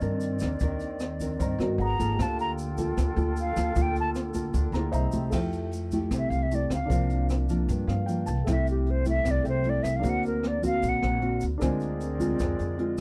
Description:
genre	bossa nova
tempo	153 BPM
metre	4/4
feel	straight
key	F major from 5.3 s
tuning	A4 = 439 Hz
part	nylon-string guitar	accompaniment	0.0-13.0 s	G2 to Bb4	-32 LUFS	equal	none
part	warm grand piano	accompaniment	0.0-13.0 s	D4 to Bb5	-40 LUFS	equal	none
part	hollow flute section	sustained chords	0.0-5.3, 11.6-13.0 s	C4 to G5	-39 LUFS	equal	none
part	upright bass	bass	0.0-13.0 s	Ab1 to G2	-32 LUFS	equal	none
part	jazz brush drum kit	drums	0.0-13.0 s	crash cymbal, hi-hat, kick drum, rim click	-36 LUFS	equal	none
part	tube shaker	percussion	0.0-13.0 s	none	-52 LUFS	equal	none
part	mellow hollow concert flute	melody	1.8-11.4 s	G4 to Bb5	-32 LUFS	equal	none
room	light reverb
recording	none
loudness	-27 LUFS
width	mono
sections	0.0-5.3 A section; 5.3-13.0 A section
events	flute solo 0.0-5.3, 5.3-13.0; grand piano fill 4.5-5.3, 7.7-8.5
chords	0.0 Cm9/Eb; 1.8 Abm9; 2.2 Gm9/D; 4.9 C7alt; 5.3 Fmaj9; 6.9 C9sus4; 8.5 C69; 10.0 Daug7; 11.6 Bb9/D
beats	0.21 | 0.61 1.00 1.39 1.79 | 2.18 2.57 2.97 3.36 | 3.75 4.14 4.54 4.93 | 5.32 5.72 6.11 6.50 | 6.89 7.29 7.68 8.07 | 8.47 8.86 9.25 9.64 | 10.04 10.43 10.82 11.22 | 11.61 12.00 12.39 12.79

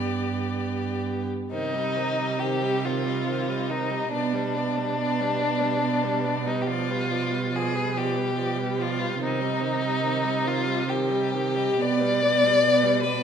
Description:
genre	classical, slow romantic movement for string quartet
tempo	47 BPM (dotted quarters)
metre	6/8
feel	uneven beats, rubato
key	C minor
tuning	A4 = 443 Hz
part	rich violin	melody	0.0-13.2 s	B4 to Eb5	-35 LUFS	left 8 dB	none
part	rich violin	second line	0.0-13.2 s	D4 to D5	-25 LUFS	left 3 dB	none
part	rich viola	accompaniment	0.0-13.2 s	Eb3 to B3	-31 LUFS	right 4 dB	none
part	rich cello	bass	0.0-13.2 s	G2 to C3	-29 LUFS	right 7 dB	none
room	wet recital hall reverb, RT60 1.6 s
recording	minimal, uncompressed stereo recording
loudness	-23 LUFS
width	side -8 dB against mid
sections	0.0-1.5 A section; 1.5-13.2 B section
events	none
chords	0.0 G; 1.5 Cm; 4.1 G/B; 6.7 G7/B; 9.2 Cm; 11.8 G/B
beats	0.13 | 1.52 2.84 | 4.12 5.41 | 6.68 7.95 | 9.20 10.45 | 11.79 13.04

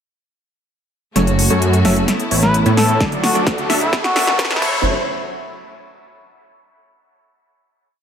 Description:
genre	EDM, festival progressive house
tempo	130 BPM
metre	4/4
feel	straight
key	F# minor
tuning	A4 = 439 Hz
part	bright symphonic string section	sustained chords	1.2-4.8 s	D3 to C#5	-24 LUFS	left 1 dB	sidechain pumping
part	supersaw stab	riff	1.2-4.8 s	E3 to E5	-21 LUFS	right 1 dB	sidechain pumping, low-pass filter, dub echo
part	wide detuned saw bass	bass	1.2-4.8 s	F#1 to A2	-18 LUFS	equal	chorus, sidechain pumping
part	big-room dance drum kit	drums	1.2-4.7 s	crash cymbal, hi-hat, snare drum	-20 LUFS	equal	overdrive
part	riser	sound effects	2.9-4.9 s	none	-26 LUFS	right 1 dB	none
part	trumpet with cup mute	melody	2.4-4.9 s	E4 to B4	-21 LUFS	left 1 dB	dub echo
part	electronic kick drum	drums	3.0-4.7 s	none	-22 LUFS	equal	none
room	moderate lush hall reverb, RT60 2.0 s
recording	high-pass filter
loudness	-14 LUFS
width	side -8 dB against mid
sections	1.2-4.9 build; 4.9-6.7 final hit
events	build-up 1.2-4.9; drum fill 1.2-4.9; filter sweep on supersaw synth 1.2-4.9; filter sweep 1.2-4.9; riser 2.9-4.9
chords	1.2 F#m; 2.1 Asus2; 3.0 D; 3.9 Bm7; 4.6 F#m; 4.9 N.C.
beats	| 1.16 1.62 2.08 2.54 | 3.01 3.47 3.93 4.39 | 4.85

